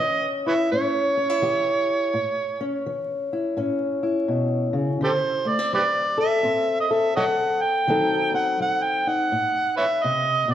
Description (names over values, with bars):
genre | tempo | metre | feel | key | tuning
acoustic country blues, solo or duo | 84 BPM | 4/4 | swing 63% on 8ths | A mixolydian | A4 = 444 Hz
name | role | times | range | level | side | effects
overdriven harmonica | melody | 0.0-10.5 s | G4 to G5 | -22 LUFS | right 2 dB | none
fingerpicked old ladder-braced acoustic guitar | accompaniment | 0.0-10.5 s | A2 to A4 | -24 LUFS | left 2 dB | none
room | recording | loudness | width
wet recital hall reverb, RT60 1.6 s | recorded in a church or concert hall, vinyl crackle | -20 LUFS | side -10 dB against mid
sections
0.0-10.5 A section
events
none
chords
0.0 A7; 5.0 D7; 7.9 D#dim7